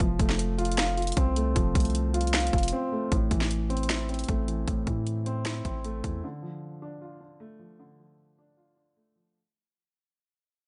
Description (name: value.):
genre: hip hop, trap.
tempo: 154 BPM.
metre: 4/4.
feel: half-time.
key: A minor.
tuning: A4 = 440 Hz.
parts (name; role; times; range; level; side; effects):
dark concert grand piano; accompaniment; 0.0-9.4 s; A2 to F5; -33 LUFS; equal; low-pass filter.
long sustained 808-style bass; bass; 0.0-6.2 s; F1 to A2; -32 LUFS; equal; none.
trap drum kit; drums; 0.0-6.1 s; finger snaps, hi-hat, kick drum, snare drum; -30 LUFS; equal; overdrive.
room: little or no reverb.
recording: nothing above 10.4 kHz.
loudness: -28 LUFS.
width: mono.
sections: 0.0-3.1 A section; 3.1-9.4 B section.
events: break 2.7-3.1; fade-out 3.1-9.4.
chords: 0.0 F; 3.1 Am; 6.2 Dm.